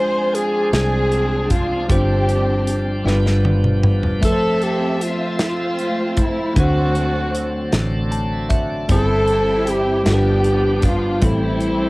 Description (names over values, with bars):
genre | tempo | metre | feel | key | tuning
slow gospel | 52 BPM (dotted quarters) | 6/8 | straight | unclear | A4 = 439 Hz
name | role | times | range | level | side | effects
breathy alto saxophone | melody | 0.0-11.9 s | E4 to C5 | -21 LUFS | right 1 dB | cassette tape
dark studio string section | melody | 0.0-11.9 s | G3 to E5 | -24 LUFS | left 2 dB | cassette tape
bell-like tine electric piano | accompaniment | 0.0-11.9 s | G2 to A5 | -21 LUFS | equal | cassette tape
bright tonewheel organ | sustained chords | 0.0-11.9 s | E3 to F#5 | -29 LUFS | right 2 dB | slow rotary speaker, overdrive, cassette tape
fingered electric bass | bass | 0.0-11.9 s | F1 to D2 | -22 LUFS | equal | transformer saturation
modern studio drum kit | drums | 0.3-11.8 s | hi-hat, kick drum, snare drum, toms | -20 LUFS | equal | cassette tape
room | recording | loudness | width
light reverb | home recording on cassette | -16 LUFS | side -22 dB against mid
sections
0.0-11.9 A section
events
drum fill 3.1-4.2; tine electric piano fill 7.7-8.9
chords
0.0 Fm6; 1.9 G7sus4; 3.1 G7; 4.2 Fmaj7; 6.6 D7; 8.9 C/G; 10.1 G7; 11.2 Am7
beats
0.74 | 1.90 3.07 | 4.24 5.40 | 6.57 7.73 | 8.90 10.06 | 11.23